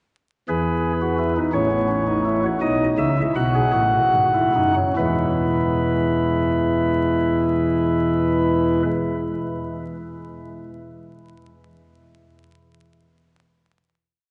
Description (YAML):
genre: classical, baroque-style 3-part fugue for pipe organ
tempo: 47-58 BPM (dotted quarters)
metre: 6/8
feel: straight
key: E major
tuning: A4 = 442 Hz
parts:
  - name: chamber organ, flutes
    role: solo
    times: 0.5-8.9 s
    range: E1 to F#5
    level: -21 LUFS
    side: equal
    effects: none
room: wet cathedral reverb, RT60 5.2 s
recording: vinyl crackle, nothing above 11.0 kHz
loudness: -20 LUFS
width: mono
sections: 0.5-5.0 exposition; 5.0-10.1 final chord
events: slowing down 0.5-6.2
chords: 0.5 E; 1.5 A; 2.6 B7; 5.0 E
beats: | 0.48 1.52 | 2.60 3.73 | 4.96 6.24 | 7.51 8.79